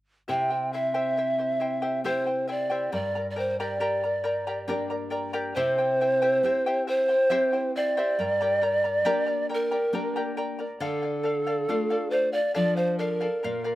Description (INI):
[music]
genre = andean folk, Andean ensemble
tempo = 68 BPM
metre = 3/4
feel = straight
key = unclear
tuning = A4 = 440 Hz
[part]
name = mellow polished pan flute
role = melody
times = 0.3-13.8 s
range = A4 to G5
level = -25 LUFS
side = equal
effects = slapback echo
[part]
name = charango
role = accompaniment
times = 0.3-13.8 s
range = E4 to Bb5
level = -31 LUFS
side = left 1 dB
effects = slapback echo
[part]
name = nylon-string guitar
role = accompaniment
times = 0.3-13.8 s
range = G2 to G4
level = -33 LUFS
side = equal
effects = slapback echo
[sound]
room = light reverb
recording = recorded outdoors, with no room sound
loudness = -24 LUFS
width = side -16 dB against mid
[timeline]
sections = 0.3-5.6 A section; 5.6-13.8 B section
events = none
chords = 0.3 C; 2.9 Gm; 5.6 C; 8.2 Gm; 10.8 Dm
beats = | 0.29 1.17 2.04 | 2.92 3.80 4.68 | 5.55 6.43 7.31 | 8.18 9.06 9.94 | 10.81 11.69 12.57 | 13.44